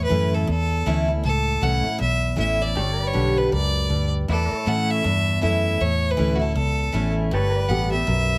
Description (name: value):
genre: country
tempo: 158 BPM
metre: 4/4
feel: swing 60% on 8ths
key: A mixolydian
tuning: A4 = 437 Hz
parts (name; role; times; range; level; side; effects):
- clear fiddle; melody; 0.0-8.4 s; F#4 to F#5; -27 LUFS; equal; none
- picked steel-string acoustic guitar; accompaniment; 0.0-8.4 s; E2 to G4; -27 LUFS; equal; none
- pedal steel guitar; sustained chords; 0.0-8.4 s; E4 to D5; -36 LUFS; equal; none
- vintage muted fingered electric bass; bass; 0.0-8.4 s; G1 to A2; -26 LUFS; equal; none
room: little or no reverb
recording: close, detailed microphones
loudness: -22 LUFS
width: mono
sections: 0.0-8.4 A section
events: none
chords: 0.0 A; 2.8 G; 4.3 A; 7.3 G